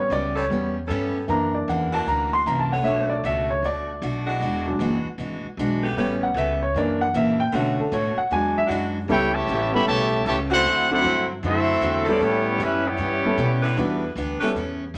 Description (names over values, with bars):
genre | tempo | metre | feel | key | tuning
jazz | 154 BPM | 4/4 | swing 65% on 8ths | A major from 9.1 s | A4 = 439 Hz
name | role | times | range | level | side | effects
warm concert grand piano | accompaniment | 0.0-14.5 s | D3 to C6 | -26 LUFS | equal | none
upright bass | bass | 0.0-15.0 s | E1 to B2 | -31 LUFS | equal | none
picked steel-string acoustic guitar | accompaniment | 0.1-15.0 s | F#2 to G4 | -33 LUFS | equal | none
edgy saxophone section | sustained chords | 0.3-14.5 s | C#3 to C#5 | -32 LUFS | equal | none
warm trumpet section | melody | 9.1-14.0 s | B3 to B5 | -24 LUFS | equal | none
warm trombone section | second line | 9.1-14.0 s | C#3 to G4 | -31 LUFS | equal | none
room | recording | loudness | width
wet studio reverb, RT60 0.7 s | none | -23 LUFS | mono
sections
0.0-9.1 A section; 9.1-15.0 B section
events
grand piano solo 0.0-9.1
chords
0.0 A9; 1.3 F#7alt; 2.8 Bm7; 4.4 E9; 6.0 A9; 6.7 F#aug7; 7.5 Bm7; 8.3 E9; 9.1 A9; 10.7 D9; 12.2 A9; 13.8 Em7